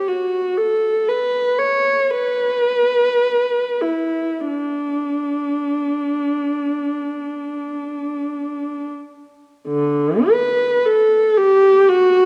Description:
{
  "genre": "classical, free, expressive piece for unaccompanied viola",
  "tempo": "37-59 BPM",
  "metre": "4/4",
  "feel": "rubato",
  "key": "D major",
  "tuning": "A4 = 437 Hz",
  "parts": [
    { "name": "dark viola", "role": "solo", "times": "0.0-12.3 s", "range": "D3 to C#5", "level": "-18 LUFS", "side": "equal", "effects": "none" }
  ],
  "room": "moderate concert hall reverb, RT60 2.2 s",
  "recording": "dark, warm production",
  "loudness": "-19 LUFS",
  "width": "mono",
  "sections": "0.0-9.7 A section; 9.7-12.3 B section",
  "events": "none",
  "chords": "none",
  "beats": "| 0.07 1.08 2.10 3.20 | 4.44 5.76 7.00 8.22 | 9.67 10.84 11.88"
}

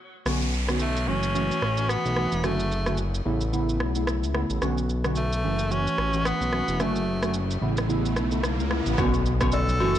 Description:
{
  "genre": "afrobeats",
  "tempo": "110 BPM",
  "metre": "4/4",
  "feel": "swing 58% on 16ths",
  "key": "B minor",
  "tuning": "A4 = 440 Hz",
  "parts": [
    { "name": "glassy digital keys", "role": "accompaniment", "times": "0.3-10.0 s", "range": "C#3 to F#4", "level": "-28 LUFS", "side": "right 1 dB", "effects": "chorus" },
    { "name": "fat analog bass", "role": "bass", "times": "0.3-10.0 s", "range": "E1 to C#2", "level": "-27 LUFS", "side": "equal", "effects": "none" },
    { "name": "afro-pop drum kit", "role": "drums", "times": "0.3-10.0 s", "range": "kick drum, rim click, shaker", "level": "-31 LUFS", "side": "right 1 dB", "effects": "vintage 12-bit sampler grit, soft clipping on snare" },
    { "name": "downlifter, riser and impact", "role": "sound effects", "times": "0.3-10.0 s", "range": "none", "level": "-34 LUFS", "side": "right 1 dB", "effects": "none" },
    { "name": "bright tenor saxophone", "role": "melody", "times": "0.8-10.0 s", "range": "A3 to A4", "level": "-30 LUFS", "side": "equal", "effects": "ping-pong delay" },
    { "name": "agogo bells and woodblock", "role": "percussion", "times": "9.0-9.9 s", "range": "none", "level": "-31 LUFS", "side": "left 8 dB", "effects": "none" }
  ],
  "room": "little or no reverb",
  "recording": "blown-out, overdriven recording, overdrive",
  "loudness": "-23 LUFS",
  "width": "side -11 dB against mid",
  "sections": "0.3-9.0 A section; 9.0-10.0 B section",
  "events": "break 0.0; riser 7.1-9.0; impact 9.0-10.0",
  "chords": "0.3 Bmadd9; 1.1 F#m7; 2.4 Dmaj7/F#; 3.3 Aadd9; 4.6 Bmadd9; 5.4 F#m7; 6.8 Dmaj7/F#; 7.6 Aadd9; 9.0 Bmadd9",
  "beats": "| 0.26 0.80 1.35 1.89 | 2.44 2.98 3.53 4.08 | 4.62 5.17 5.71 6.26 | 6.80 7.35 7.89 8.44 | 8.98 9.53"
}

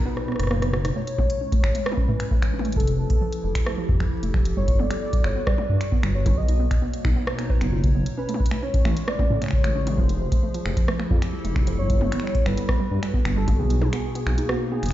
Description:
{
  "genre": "IDM",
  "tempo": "133 BPM",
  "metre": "4/4",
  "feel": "straight",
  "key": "unclear",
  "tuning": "A4 = 436 Hz",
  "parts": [
    { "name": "warm velvety synth lead", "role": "melody", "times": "0.0-14.9 s", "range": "F#4 to D#5", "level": "-31 LUFS", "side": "left 1 dB", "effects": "chorus, tape echo" },
    { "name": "warbly tape-like pad", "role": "sustained chords", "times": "0.0-14.9 s", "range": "A2 to C#5", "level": "-31 LUFS", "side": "left 1 dB", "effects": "chorus, built-in reverb, sidechain pumping" },
    { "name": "warbly dusty pluck", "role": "arpeggios", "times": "0.0-14.8 s", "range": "F3 to B4", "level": "-31 LUFS", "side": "right 4 dB", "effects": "chorus, digital delay" },
    { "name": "electronic kick drum", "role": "drums", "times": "0.0-13.6 s", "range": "none", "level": "-23 LUFS", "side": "equal", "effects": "studio reverb" },
    { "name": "organic electronic drum kit", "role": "drums", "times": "0.2-14.9 s", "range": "finger snaps, hi-hat, rim click, toms", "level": "-31 LUFS", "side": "equal", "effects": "overdrive, studio reverb" },
    { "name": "dark detuned saw bass", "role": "bass", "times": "0.4-14.9 s", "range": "F1 to A2", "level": "-24 LUFS", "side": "equal", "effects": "none" }
  ],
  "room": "little or no reverb",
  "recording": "played on a big sound system in a bare room, stone room reverb, nothing above 7.7 kHz",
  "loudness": "-20 LUFS",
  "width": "side -14 dB against mid",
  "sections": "0.0-14.9 A section",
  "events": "break 0.1-1.0; drum fill 0.1-1.0; kick drops out 13.6-14.9",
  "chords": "0.0 Bmaj9; 1.0 Amaj9; 2.8 Fmaj9; 4.6 Gmaj9; 6.4 Bmaj9; 8.2 Amaj9; 10.0 Fmaj9; 11.8 Gmaj9; 13.6 Bmaj9",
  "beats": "0.06 0.51 | 0.96 1.41 1.86 2.31 | 2.76 3.21 3.67 4.12 | 4.57 5.02 5.47 5.92 | 6.37 6.82 7.27 7.72 | 8.18 8.63 9.08 9.53 | 9.98 10.43 10.88 11.33 | 11.79 12.24 12.69 13.14 | 13.59 14.04 14.49"
}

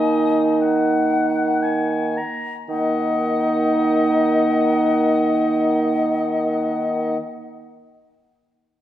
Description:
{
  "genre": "classical, slow romantic movement for wind quintet",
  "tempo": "free time",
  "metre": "none",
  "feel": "none",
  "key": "Eb minor",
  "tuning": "A4 = 444 Hz",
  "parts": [
    { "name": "bright silver concert flute", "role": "melody", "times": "0.0-7.2 s", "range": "Gb5 to Ab5", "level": "-26 LUFS", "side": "left 6 dB", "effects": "none" },
    { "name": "warm oboe", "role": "second line", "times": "0.0-7.2 s", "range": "Eb5 to Bb5", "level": "-26 LUFS", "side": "left 4 dB", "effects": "none" },
    { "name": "mellow French horn", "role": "accompaniment", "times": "0.0-7.2 s", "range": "Bb3", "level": "-26 LUFS", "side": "equal", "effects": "none" },
    { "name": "mellow clarinet", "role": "accompaniment", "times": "0.0-7.2 s", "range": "Eb4", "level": "-22 LUFS", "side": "right 4 dB", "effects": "none" },
    { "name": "mellow bassoon", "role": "bass", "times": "0.0-7.2 s", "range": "Eb3", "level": "-23 LUFS", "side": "equal", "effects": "none" }
  ],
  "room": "wet concert hall reverb, RT60 1.9 s",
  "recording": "none",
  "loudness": "-17 LUFS",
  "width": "side -12 dB against mid",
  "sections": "0.0-2.7 A section; 2.7-8.7 B section",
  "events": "slowing down 0.0-2.7",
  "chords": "0.0 Ebm",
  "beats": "free time"
}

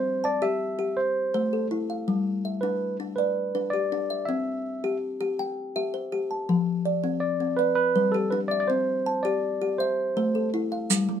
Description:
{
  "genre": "southern african traditional, mbira-style interlocking cycle",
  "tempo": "109 BPM (dotted quarters)",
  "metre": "12/8",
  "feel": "straight",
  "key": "unclear",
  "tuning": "A4 = 440 Hz",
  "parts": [
    { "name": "bright tine electric piano", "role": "melody", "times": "0.0-10.5 s", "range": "A4 to E5", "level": "-26 LUFS", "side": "right 1 dB", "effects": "none" },
    { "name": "kalimba", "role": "arpeggios", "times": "0.0-11.2 s", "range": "F3 to A5", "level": "-26 LUFS", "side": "left 2 dB", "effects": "none" },
    { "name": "maracas", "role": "percussion", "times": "10.9-11.1 s", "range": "none", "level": "-23 LUFS", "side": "right 9 dB", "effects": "none" },
    { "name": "kalimba", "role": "arpeggios", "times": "11.1-11.2 s", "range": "G3", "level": "-29 LUFS", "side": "right 9 dB", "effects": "none" }
  ],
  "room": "light reverb",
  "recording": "minimal, uncompressed stereo recording",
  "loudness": "-24 LUFS",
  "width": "side -8 dB against mid",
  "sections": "0.0-10.9 A section",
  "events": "none",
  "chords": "0.0 C; 1.0 Am; 2.1 G; 4.3 C; 6.5 F; 7.6 G; 8.7 C; 9.8 Am",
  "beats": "0.42 0.97 1.52 | 2.08 2.63 3.18 3.73 | 4.28 4.83 5.39 5.94 | 6.49 7.04 7.59 8.14 | 8.70 9.25 9.80 10.35 | 10.90"
}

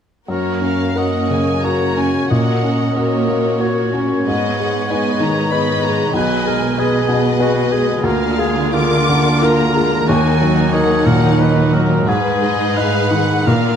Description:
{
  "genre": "classical, romantic movement for piano and orchestra",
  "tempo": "79-97 BPM",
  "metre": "3/4",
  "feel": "rubato",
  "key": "F# major, Eb minor from 8.0 s",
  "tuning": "A4 = 440 Hz",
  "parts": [
    { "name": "clear baby grand piano", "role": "melody", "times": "0.3-13.8 s", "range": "B1 to B4", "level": "-17 LUFS", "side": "left 1 dB", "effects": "none" },
    { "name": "warm symphonic violin section", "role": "melody", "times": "0.3-13.8 s", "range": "Cb5 to D6", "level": "-24 LUFS", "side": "left 3 dB", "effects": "none" },
    { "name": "clear oboe", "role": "second line", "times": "0.3-13.8 s", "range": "F4 to D#5", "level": "-24 LUFS", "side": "right 1 dB", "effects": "none" },
    { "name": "warm symphonic violin section", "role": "second line", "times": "0.3-13.8 s", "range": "Bb3 to D#5", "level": "-24 LUFS", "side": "left 4 dB", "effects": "none" },
    { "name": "warm symphonic viola section", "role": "accompaniment", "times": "0.3-13.8 s", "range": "Ab3 to G#4", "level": "-22 LUFS", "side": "right 3 dB", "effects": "none" },
    { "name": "dark symphonic cello section", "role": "bass", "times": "0.3-13.8 s", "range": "F#2 to Eb3", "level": "-22 LUFS", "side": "right 3 dB", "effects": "none" }
  ],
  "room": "moderate scoring stage reverb, RT60 1.8 s",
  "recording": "none",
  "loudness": "-13 LUFS",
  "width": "side -8 dB against mid",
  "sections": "0.3-13.8 A section",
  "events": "none",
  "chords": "0.3 F#; 2.3 F#/A#; 4.3 G#m; 6.2 G#m/B; 8.0 Bb7/D; 10.1 Ebm; 12.1 Abm",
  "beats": "| 0.30 0.98 1.65 | 2.31 2.96 3.60 | 4.26 4.90 5.53 | 6.15 6.78 7.41 | 8.04 8.74 9.43 | 10.08 10.73 11.39 | 12.06 12.75 13.47"
}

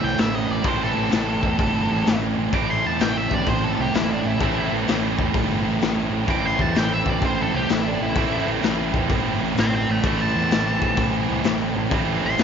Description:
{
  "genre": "blues rock power trio and southern rock",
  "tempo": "128 BPM",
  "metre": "4/4",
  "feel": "swing 66% on 8ths",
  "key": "A minor",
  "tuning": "A4 = 440 Hz",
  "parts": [
    { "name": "octave-fuzz lead guitar", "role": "melody", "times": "0.0-12.4 s", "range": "D4 to D6", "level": "-26 LUFS", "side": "right 1 dB", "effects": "distortion, slapback echo" },
    { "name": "sludgy distorted guitar", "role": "riff", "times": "0.0-12.4 s", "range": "A2 to E4", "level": "-22 LUFS", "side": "right 2 dB", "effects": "overdrive" },
    { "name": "fuzz fingered electric bass", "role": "bass", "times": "0.0-12.4 s", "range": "G1 to E2", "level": "-28 LUFS", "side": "right 1 dB", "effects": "overdrive" },
    { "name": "raw garage drum kit", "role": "drums", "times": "0.2-12.4 s", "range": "hi-hat, kick drum, snare drum", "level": "-25 LUFS", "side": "left 3 dB", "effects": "none" }
  ],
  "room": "light reverb",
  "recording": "1960s-style stereo, nothing above 7.5 kHz",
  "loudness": "-19 LUFS",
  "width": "side -7 dB against mid",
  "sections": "0.0-12.4 A section",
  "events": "lead electric guitar solo 0.0-12.4",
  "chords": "0.0 Am",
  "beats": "0.19 | 0.66 1.13 1.60 2.07 | 2.54 3.00 3.47 3.94 | 4.41 4.88 5.35 5.82 | 6.29 6.76 7.23 7.70 | 8.16 8.63 9.10 9.57 | 10.04 10.51 10.98 11.45 | 11.92 12.39"
}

